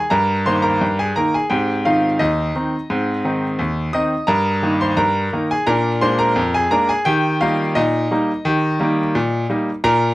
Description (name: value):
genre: ragtime piano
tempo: 86 BPM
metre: 2/4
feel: straight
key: Eb major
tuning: A4 = 439 Hz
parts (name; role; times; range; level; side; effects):
- bright grand piano; solo; 0.0-10.1 s; Eb2 to Eb6; -16 LUFS; equal; none
room: little or no reverb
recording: close, detailed microphones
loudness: -16 LUFS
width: side -18 dB against mid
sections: 0.0-10.1 A section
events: none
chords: 0.1 Eb/G; 1.5 Ab; 4.3 Eb/G; 5.7 Bb7; 7.1 Eb